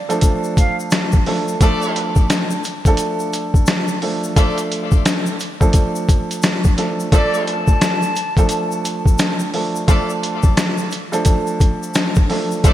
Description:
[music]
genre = hip hop, boom-bap hip-hop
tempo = 87 BPM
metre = 4/4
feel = swing 62% on 16ths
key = D minor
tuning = A4 = 440 Hz
[part]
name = breathy mellow jazz flute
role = melody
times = 0.0-0.8, 7.1-8.7 s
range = D5 to A5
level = -24 LUFS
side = equal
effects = high-pass filter, low-pass filter, ping-pong delay
[part]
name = dark grand piano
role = accompaniment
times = 0.1-12.7 s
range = F3 to A4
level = -21 LUFS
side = right 2 dB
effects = high-pass filter, low-pass filter
[part]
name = trip hop sampler-style drum kit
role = drums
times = 0.1-12.7 s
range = hi-hat, kick drum, snare drum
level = -15 LUFS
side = equal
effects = gated reverb
[part]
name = tube shaker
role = percussion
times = 0.1-12.7 s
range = none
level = -34 LUFS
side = left 6 dB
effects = none
[part]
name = warm horn section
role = stabs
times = 1.6-12.7 s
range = A3 to D5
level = -27 LUFS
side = left 2 dB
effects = high-pass filter, low-pass filter, ping-pong delay
[sound]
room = light reverb, small room ambience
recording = bright 1980s-style digital production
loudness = -15 LUFS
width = side -13 dB against mid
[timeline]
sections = 0.0-12.7 A section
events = none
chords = 0.0 Dm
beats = 0.23 0.92 | 1.60 2.29 2.98 3.67 | 4.36 5.05 5.74 6.43 | 7.12 7.81 8.50 9.19 | 9.88 10.57 11.26 11.95 | 12.64

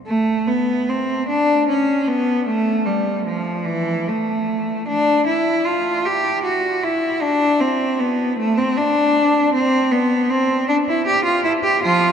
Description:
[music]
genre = classical, baroque-style suite movement for unaccompanied cello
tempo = 77 BPM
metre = 3/4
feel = rubato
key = A minor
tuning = A4 = 440 Hz
[part]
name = rich cello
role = solo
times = 0.1-12.1 s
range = E3 to G4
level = -16 LUFS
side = equal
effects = none
[sound]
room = wet cathedral reverb, RT60 5.4 s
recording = in a vast, echoing space, nothing above 10.4 kHz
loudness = -16 LUFS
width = side -7 dB against mid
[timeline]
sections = 0.1-12.1 A section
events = none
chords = none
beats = | 0.07 0.88 1.68 | 2.47 3.25 4.09 | 4.88 5.66 6.44 | 7.22 7.99 8.77 | 9.53 10.29 11.06 | 11.81

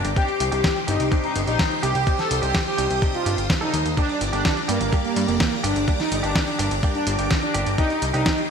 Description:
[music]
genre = italo disco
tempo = 126 BPM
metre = 4/4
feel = straight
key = unclear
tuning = A4 = 440 Hz
[part]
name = analog synth brass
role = melody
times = 0.0-8.4 s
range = Bb3 to A4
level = -24 LUFS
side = equal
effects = chorus, ping-pong delay
[part]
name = string machine, full ensemble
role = sustained chords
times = 0.0-8.5 s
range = G4 to Eb6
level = -29 LUFS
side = left 1 dB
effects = phaser, ensemble chorus
[part]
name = direct-recorded clean electric guitar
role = stabs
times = 0.0-8.3 s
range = G2 to A4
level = -31 LUFS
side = right 3 dB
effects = low-pass filter, ping-pong delay
[part]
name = fat analog bass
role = bass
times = 0.0-8.2 s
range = F1 to G2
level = -26 LUFS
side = left 1 dB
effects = none
[part]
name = dusty soul sampler-style drum kit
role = drums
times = 0.0-8.5 s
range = hi-hat, snare drum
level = -27 LUFS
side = equal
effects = none
[part]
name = electronic kick drum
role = drums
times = 0.2-8.4 s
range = none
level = -23 LUFS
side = equal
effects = none
[sound]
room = moderate lush hall reverb, RT60 1.7 s, digital ambience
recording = bright 1980s-style digital production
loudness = -19 LUFS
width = side -6 dB against mid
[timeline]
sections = 0.0-8.5 A section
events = none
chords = 0.2 Cmadd9; 4.0 Gm; 7.8 Cmadd9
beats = | 0.17 0.64 1.12 1.59 | 2.07 2.55 3.02 3.50 | 3.98 4.45 4.93 5.40 | 5.88 6.36 6.83 7.31 | 7.78 8.26

